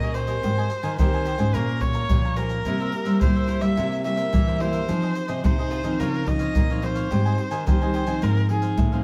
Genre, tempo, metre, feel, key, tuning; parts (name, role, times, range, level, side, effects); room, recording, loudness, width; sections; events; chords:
samba and choro; 108 BPM; 4/4; straight; F minor; A4 = 440 Hz
rich erhu; melody; 0.0-9.0 s; Ab4 to E5; -31 LUFS; equal; plate reverb
cavaquinho; accompaniment; 0.0-9.0 s; Eb4 to Bb5; -37 LUFS; equal
nylon-string guitar; accompaniment; 0.0-9.0 s; G2 to C5; -31 LUFS; equal
nylon-string guitar; bass; 0.0-9.0 s; Ab2 to G3; -28 LUFS; equal
maracas, pandeiro and surdo; percussion; 0.0-9.0 s; -27 LUFS; equal
wet studio reverb, RT60 0.6 s; heard from further back in the room; -23 LUFS; mono
0.0-9.0 A section
0.4 Abmaj9; 1.5 Bbm9; 2.7 C7; 4.9 Fm7; 6.0 Dbmaj9; 7.1 Abmaj7; 8.2 Fm7/Ab